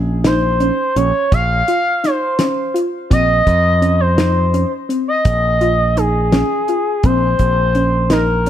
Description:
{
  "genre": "progressive instrumental, band music in an uneven meter",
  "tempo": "168 BPM (eighths)",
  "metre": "11/8",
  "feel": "straight",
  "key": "Bb minor",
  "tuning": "A4 = 440 Hz",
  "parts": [
    { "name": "soft round pluck", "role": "arpeggios", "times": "0.0-8.5 s", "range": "C4 to F4", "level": "-21 LUFS", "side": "equal", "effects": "chorus, ping-pong delay" },
    { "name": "modern bright picked electric bass", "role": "bass", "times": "0.0-8.5 s", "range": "Bb1 to F2", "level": "-17 LUFS", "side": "equal", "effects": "none" },
    { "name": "damped 70s drum kit", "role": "drums", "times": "0.2-8.5 s", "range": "hi-hat, kick drum, snare drum", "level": "-17 LUFS", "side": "equal", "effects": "none" },
    { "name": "expressive portamento lead", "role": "melody", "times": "0.3-8.5 s", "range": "Ab4 to F5", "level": "-16 LUFS", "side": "equal", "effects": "chorus, ping-pong delay" }
  ],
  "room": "light reverb",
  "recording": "none",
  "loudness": "-13 LUFS",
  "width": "side -10 dB against mid",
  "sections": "0.0-8.5 A section",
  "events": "none",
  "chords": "0.0 Bbmadd9",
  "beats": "0.24 0.60 0.96 1.32 1.68 2.04 2.40 2.75 | 3.11 3.47 3.83 4.18 4.54 4.90 5.26 5.61 5.97 6.33 6.69 | 7.04 7.40 7.76 8.12 8.47"
}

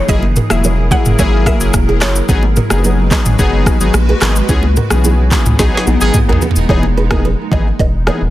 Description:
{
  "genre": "afrobeats",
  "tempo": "109 BPM",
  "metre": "4/4",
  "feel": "straight",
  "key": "F# mixolydian",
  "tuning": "A4 = 440 Hz",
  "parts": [
    { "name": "mallet-like synth pluck", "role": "melody", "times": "0.0-2.1 s", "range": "C#5 to F#5", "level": "-22 LUFS", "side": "equal", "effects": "chorus, digital delay" },
    { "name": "granular cloud pad", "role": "sustained chords", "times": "0.0-6.7 s", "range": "C#3 to B4", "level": "-22 LUFS", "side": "equal", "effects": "built-in reverb" },
    { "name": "warm analog keys", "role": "accompaniment", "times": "0.1-8.2 s", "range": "E3 to G#4", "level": "-19 LUFS", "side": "left 3 dB", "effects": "chorus" },
    { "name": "nylon-string guitar", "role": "riff", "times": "0.1-8.2 s", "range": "D#4 to E5", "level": "-22 LUFS", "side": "right 4 dB", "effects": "digital delay" },
    { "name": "saturated sub bass", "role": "bass", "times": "0.1-8.3 s", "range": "D#1 to C#2", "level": "-14 LUFS", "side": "equal", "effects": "none" },
    { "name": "afro-pop drum kit", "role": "drums", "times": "0.1-8.2 s", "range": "handclaps, kick drum, rim click, shaker, snare drum, toms", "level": "-14 LUFS", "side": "equal", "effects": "none" },
    { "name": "congas", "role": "percussion", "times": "0.2-8.2 s", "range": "none", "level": "-24 LUFS", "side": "right 5 dB", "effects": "none" },
    { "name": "warm horn section", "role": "second line", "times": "5.7-6.2 s", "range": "D#3 to G#4", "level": "-21 LUFS", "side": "right 2 dB", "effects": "digital delay" }
  ],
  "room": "digital ambience",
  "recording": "dense, heavily limited modern master",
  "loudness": "-10 LUFS",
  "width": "side -15 dB against mid",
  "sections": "0.0-6.7 A section; 6.7-8.3 B section",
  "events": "band accent 4.5-6.7; drum fill 5.6-6.7; break 6.7-8.3",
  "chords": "0.0 F#9; 2.3 G#m7; 4.5 C#m7; 5.6 B6; 6.7 Emaj7",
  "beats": "| 0.09 0.64 1.19 1.74 | 2.29 2.84 3.39 3.94 | 4.49 5.04 5.59 6.14 | 6.69 7.24 7.79"
}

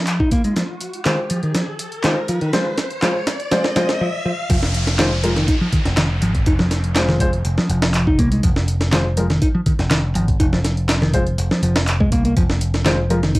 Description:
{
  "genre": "breakbeat, breaks",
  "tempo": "122 BPM",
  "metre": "4/4",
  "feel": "straight",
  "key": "F minor pentatonic",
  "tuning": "A4 = 440 Hz",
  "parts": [
    { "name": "picked electric bass", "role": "riff", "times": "0.0-13.4 s", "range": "Eb3 to Eb4", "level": "-21 LUFS", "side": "equal", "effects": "tube saturation, analog delay" },
    { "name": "riser and downlifter", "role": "sound effects", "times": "0.2-8.4 s", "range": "none", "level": "-28 LUFS", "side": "equal", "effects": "none" },
    { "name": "breakbeat sampler-style drum kit", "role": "drums", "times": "0.1-13.4 s", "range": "hi-hat, kick drum, snare drum", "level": "-20 LUFS", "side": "equal", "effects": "small room ambience" },
    { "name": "punchy analog drum machine", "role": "drums", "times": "0.1-13.4 s", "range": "handclaps, hi-hat", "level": "-27 LUFS", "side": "equal", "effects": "small room ambience" },
    { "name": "dark baby grand piano", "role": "stabs", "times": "1.1-13.2 s", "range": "Ab3 to C5", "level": "-22 LUFS", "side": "left 1 dB", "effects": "low-pass filter, analog delay" },
    { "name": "picked electric bass", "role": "bass", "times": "4.5-13.3 s", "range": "F1 to C2", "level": "-20 LUFS", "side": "equal", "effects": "none" }
  ],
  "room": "moderate small room reverb, RT60 0.5 s",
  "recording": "dry, gritty hardware recording, cassette tape",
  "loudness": "-16 LUFS",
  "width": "side -19 dB against mid",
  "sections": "0.0-4.5 A section; 4.5-13.4 B section",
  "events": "build-up 0.0-4.5; filter sweep on picked electric bass 0.0-4.5; riser 0.2-4.5; drum fill 0.6-4.0; break 4.0-4.5; drop 4.5-13.4",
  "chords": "0.0 Fm",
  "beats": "0.07 | 0.56 1.06 1.55 2.04 | 2.53 3.02 3.52 4.01 | 4.50 4.99 5.48 5.97 | 6.47 6.96 7.45 7.94 | 8.43 8.93 9.42 9.91 | 10.40 10.89 11.38 11.88 | 12.37 12.86 13.35"
}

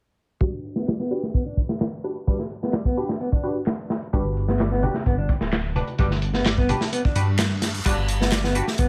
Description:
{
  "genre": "breakbeat, breaks",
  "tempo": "129 BPM",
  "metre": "4/4",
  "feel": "straight",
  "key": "unclear",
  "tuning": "A4 = 440 Hz",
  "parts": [
    { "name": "mellow electric guitar", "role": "riff", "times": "0.4-8.9 s", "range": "G3 to G4", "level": "-31 LUFS", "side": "equal", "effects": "vintage 12-bit sampler grit, low-pass filter, dub echo" },
    { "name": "band-passed chord stab", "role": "stabs", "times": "0.4-8.7 s", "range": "D4 to B4", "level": "-34 LUFS", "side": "equal", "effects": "phaser, lush chorus, dub echo" },
    { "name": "crunchy breakbeat drum kit", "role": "drums", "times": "0.4-8.9 s", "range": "crash cymbal, hi-hat, kick drum, snare drum", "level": "-26 LUFS", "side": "equal", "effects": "none" },
    { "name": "electronic handclaps", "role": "drums", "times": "0.9-8.4 s", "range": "none", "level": "-34 LUFS", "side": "equal", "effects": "overdrive" },
    { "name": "dark detuned saw bass", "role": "bass", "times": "4.1-8.9 s", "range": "D1 to G2", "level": "-27 LUFS", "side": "equal", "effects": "tube saturation" },
    { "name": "congas", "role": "percussion", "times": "4.8-6.8 s", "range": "none", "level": "-33 LUFS", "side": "equal", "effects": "none" },
    { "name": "reverse cymbal", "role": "sound effects", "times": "7.1-7.9 s", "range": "none", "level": "-38 LUFS", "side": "equal", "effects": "none" }
  ],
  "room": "studio ambience",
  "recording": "low-pass filter",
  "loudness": "-23 LUFS",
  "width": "mono",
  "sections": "0.4-7.9 A section; 7.9-8.9 B section",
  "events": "filter sweep on clean electric guitar 0.4-7.9; filter sweep on synth stab 0.4-7.9; filter sweep 0.4-7.9; reverse cymbal 7.1-7.9",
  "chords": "0.4 Gmaj7",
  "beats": "| 0.41 0.88 1.34 1.81 | 2.27 2.74 3.21 3.67 | 4.14 4.60 5.07 5.53 | 6.00 6.46 6.93 7.39 | 7.86 8.32 8.79"
}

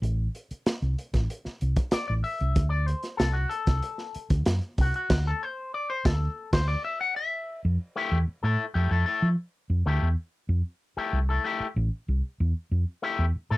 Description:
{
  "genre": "funk",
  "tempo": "95 BPM",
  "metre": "4/4",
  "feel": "straight",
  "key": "unclear",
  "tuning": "A4 = 439 Hz",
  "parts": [
    { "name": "hollow-body short-scale fingered electric bass", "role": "bass", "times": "0.0-13.6 s", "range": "A1 to F3", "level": "-25 LUFS", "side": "equal", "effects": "none" },
    { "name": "crunchy breakbeat drum kit", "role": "drums", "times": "0.0-6.7 s", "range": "crash cymbal, hi-hat, kick drum, snare drum", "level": "-26 LUFS", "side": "equal", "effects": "none" },
    { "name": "electric guitar with an envelope filter", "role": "accompaniment", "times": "1.9-13.6 s", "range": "A3 to F#5", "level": "-29 LUFS", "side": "left 4 dB", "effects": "none" }
  ],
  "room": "little or no reverb",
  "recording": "dry, close 1970s-style studio recording",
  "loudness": "-25 LUFS",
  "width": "side -19 dB against mid",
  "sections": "0.0-7.6 A section; 7.6-13.6 B section",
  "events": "clean electric guitar solo 0.0-7.6; band accent 5.1-7.6",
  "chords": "0.0 Am; 2.6 D7; 7.6 Fmaj9",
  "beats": "| 0.02 0.66 1.29 1.93 | 2.56 3.20 3.83 4.47 | 5.10 5.74 6.37 7.00 | 7.64 8.27 8.91 9.54 | 10.17 10.81 11.44 12.08 | 12.71 13.35"
}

